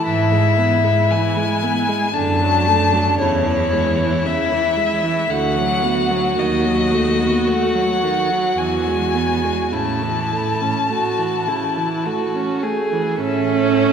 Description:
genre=classical, slow romantic movement for string quartet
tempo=51-58 BPM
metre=3/4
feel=rubato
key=A major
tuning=A4 = 439 Hz
part: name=clear violin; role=melody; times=0.0-13.9 s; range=C#5 to A5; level=-20 LUFS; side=left 5 dB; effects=none
part: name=warm violin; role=second line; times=0.0-13.9 s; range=D4 to A4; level=-23 LUFS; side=right 1 dB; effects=none
part: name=clear viola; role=accompaniment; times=0.0-13.9 s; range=C#3 to C#4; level=-22 LUFS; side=right 4 dB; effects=none
part: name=clear cello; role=bass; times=0.1-13.9 s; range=D2 to A2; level=-22 LUFS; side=right 2 dB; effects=none
room=wet church reverb, RT60 2.9 s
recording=recorded in a church or concert hall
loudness=-16 LUFS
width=side -7 dB against mid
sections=0.0-13.2 A section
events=none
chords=0.1 E/G#; 2.2 D/F#; 3.2 C#m/E; 5.3 Bm/D; 6.4 B7/D#; 8.6 E; 9.7 A

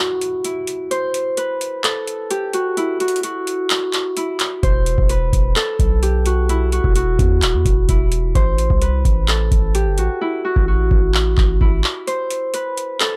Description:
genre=hip hop, trap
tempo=129 BPM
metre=4/4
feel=half-time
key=unclear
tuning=A4 = 439 Hz
part: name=Celtic harp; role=melody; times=0.0-13.2 s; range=E4 to C5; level=-23 LUFS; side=equal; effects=low-pass filter
part: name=downlifter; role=sound effects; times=0.0-0.9 s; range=none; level=-50 LUFS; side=equal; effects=none
part: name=booming analog drum machine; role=drums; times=0.2-13.1 s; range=handclaps, hi-hat, kick drum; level=-20 LUFS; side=equal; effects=overdrive
part: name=long sustained 808-style bass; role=bass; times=4.6-11.8 s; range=D#1 to E2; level=-20 LUFS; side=equal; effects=none
room=digital ambience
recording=none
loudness=-18 LUFS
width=mono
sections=0.0-13.2 A section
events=break 0.0-4.6, 12.1-13.2; hi-hats muted 10.2-12.1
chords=0.0 N.C.; 4.6 Esus2; 8.4 A5; 12.1 N.C.

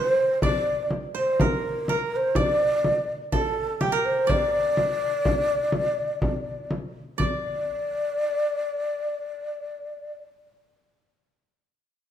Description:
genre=Arabic maqam ensemble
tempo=124 BPM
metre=4/4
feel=straight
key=D maqam bayati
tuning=A4 = 440 Hz
part: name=breathy mellow ney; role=melody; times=0.0-10.2 s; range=G4 to D5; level=-24 LUFS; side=equal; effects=none
part: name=koto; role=second line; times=0.0-10.2 s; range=G4 to D5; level=-31 LUFS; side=right 4 dB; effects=none
part: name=frame drum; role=percussion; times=0.4-7.4 s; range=none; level=-27 LUFS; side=left 1 dB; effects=none
room=moderate recital hall reverb, RT60 1.5 s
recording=minimal, uncompressed stereo recording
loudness=-22 LUFS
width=side -10 dB against mid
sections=0.0-7.2 A section; 7.2-11.0 B section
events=none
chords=none

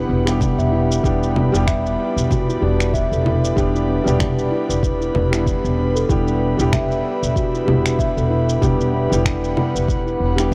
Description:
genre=organic downtempo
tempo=95 BPM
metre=4/4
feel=swing 57% on 16ths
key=unclear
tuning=A4 = 440 Hz
part: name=felt-muted upright piano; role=accompaniment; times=0.0-10.5 s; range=G3 to G4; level=-25 LUFS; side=equal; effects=sidechain pumping, delay
part: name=airy breathy pad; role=sustained chords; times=0.0-10.5 s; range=G4 to B5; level=-30 LUFS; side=equal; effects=chorus, sidechain pumping
part: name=steel tongue drum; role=arpeggios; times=0.0-10.5 s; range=B3 to E5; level=-26 LUFS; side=equal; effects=vintage 12-bit sampler grit, delay
part: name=upright bass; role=bass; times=0.0-10.5 s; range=E1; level=-23 LUFS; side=equal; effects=sidechain pumping
part: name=bronze singing bowl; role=texture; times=0.0-10.5 s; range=D4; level=-38 LUFS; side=equal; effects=none
part: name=electronic finger snaps, shaker and congas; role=drums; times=0.3-10.5 s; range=none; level=-27 LUFS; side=equal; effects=small room reverb
part: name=electronic kick drum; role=drums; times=0.4-10.5 s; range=none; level=-24 LUFS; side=equal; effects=small room reverb
room=light reverb, small room ambience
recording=worn, warbling old tape, cassette tape, warbly pitch drift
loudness=-19 LUFS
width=mono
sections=0.0-10.5 A section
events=none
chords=0.0 G/E

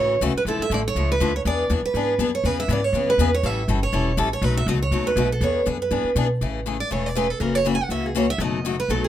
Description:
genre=acoustic string swing (jazz manouche)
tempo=242 BPM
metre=4/4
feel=swing 55% on 8ths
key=A major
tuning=A4 = 436 Hz
part: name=picked steel-string acoustic guitar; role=melody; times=0.0-9.1 s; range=G#4 to G#5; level=-24 LUFS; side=right 4 dB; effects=none
part: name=picked steel-string acoustic guitar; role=accompaniment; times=0.0-9.1 s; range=B2 to A4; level=-24 LUFS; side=left 5 dB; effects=none
part: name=upright bass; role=bass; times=0.0-9.1 s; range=E1 to B2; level=-25 LUFS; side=equal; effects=none
room=light reverb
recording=minimal, uncompressed stereo recording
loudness=-20 LUFS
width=side -11 dB against mid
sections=0.0-6.4 A section; 6.4-9.1 B section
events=steel-string acoustic guitar solo 6.4-9.1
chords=0.5 Dmadd9; 1.5 E7; 2.4 C#m7; 3.4 A7; 4.4 B7; 5.4 E7; 6.4 Amaj7; 7.4 F#7; 8.4 B7/F#

